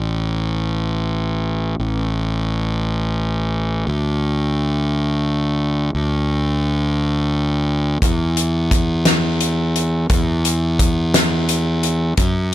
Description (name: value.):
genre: post-rock.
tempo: 58 BPM (dotted quarters).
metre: 6/8.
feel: straight.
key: unclear.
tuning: A4 = 440 Hz.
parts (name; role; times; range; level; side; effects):
fuzz fingered electric bass; bass; 0.0-12.5 s; A1 to F#2; -18 LUFS; equal; overdrive.
loose indie drum kit; drums; 8.0-12.3 s; hi-hat, kick drum, snare drum; -18 LUFS; left 1 dB; none.
room: little or no reverb.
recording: none.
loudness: -16 LUFS.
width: side -14 dB against mid.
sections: 0.0-12.5 A section.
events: none.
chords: none.